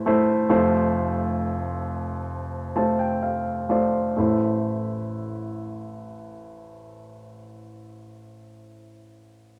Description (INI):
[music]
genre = pop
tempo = 62-69 BPM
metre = 4/4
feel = straight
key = A minor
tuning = A4 = 440 Hz
[part]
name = warm grand piano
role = solo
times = 0.0-9.6 s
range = F1 to A5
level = -25 LUFS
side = equal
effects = none
[sound]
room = moderate studio reverb, RT60 0.6 s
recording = none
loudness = -24 LUFS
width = mono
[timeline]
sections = 0.0-4.2 A section; 4.2-8.0 B section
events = slowing down 0.0-4.2; grand piano fill 2.3-4.2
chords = 0.5 F; 4.2 Am